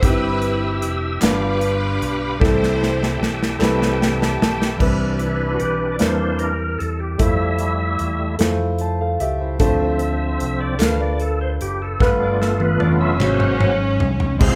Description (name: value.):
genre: slow gospel.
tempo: 50 BPM (dotted quarters).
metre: 6/8.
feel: straight.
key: C major.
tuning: A4 = 437 Hz.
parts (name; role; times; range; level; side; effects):
warm studio string section; melody; 0.0-3.6, 12.8-14.6 s; F3 to C5; -26 LUFS; equal; none.
clear baby grand piano; accompaniment; 0.0-14.6 s; G2 to A5; -25 LUFS; equal; none.
bright tonewheel organ; sustained chords; 0.0-14.6 s; E3 to E6; -26 LUFS; equal; fast rotary speaker, chorus vibrato.
fingered electric bass; bass; 0.0-14.6 s; F1 to F2; -26 LUFS; equal; none.
modern studio drum kit; drums; 0.0-14.6 s; crash cymbal, hi-hat, kick drum, snare drum, toms; -22 LUFS; equal; none.
group handclap; percussion; 1.2-4.0, 10.8-13.6 s; none; -37 LUFS; equal; none.
room: light reverb.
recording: band playing live in one room.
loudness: -19 LUFS.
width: mono.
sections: 0.0-4.8 A section; 4.8-14.4 B section.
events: drum fill 2.4-4.8, 12.0-14.4; grand piano fill 3.6-4.8; tonewheel organ solo 4.8-14.4.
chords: 0.0 C/G; 1.2 G7; 2.4 C6; 4.8 Cmaj7; 6.0 C7/E; 7.2 Fmaj7; 9.6 Dm7; 12.0 G7; 13.2 Ab7.